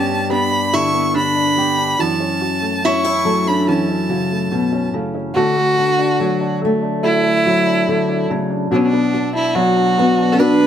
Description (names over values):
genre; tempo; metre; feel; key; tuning
acoustic folk duo or small band; 71 BPM; 4/4; straight; unclear; A4 = 439 Hz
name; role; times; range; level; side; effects
rich fiddle; melody; 0.0-10.7 s; C#4 to C#6; -18 LUFS; right 1 dB; none
lap resonator guitar; second line; 0.0-4.9, 10.3-10.7 s; C#4 to E4; -20 LUFS; right 2 dB; none
fingerpicked steel-string acoustic guitar; accompaniment; 0.0-10.7 s; F#2 to A4; -19 LUFS; left 3 dB; none
felt-muted upright piano; arpeggios; 0.0-10.7 s; E3 to G4; -23 LUFS; right 3 dB; none
room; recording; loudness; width
moderate studio reverb, RT60 0.8 s; none; -14 LUFS; side -9 dB against mid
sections
0.0-5.4 A section; 5.4-10.7 B section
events
none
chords
0.0 G; 2.0 F#m7; 5.4 D; 8.7 Bm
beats
0.31 1.15 | 1.99 2.83 3.68 4.52 | 5.36 6.20 7.04 7.88 | 8.72 9.56 10.39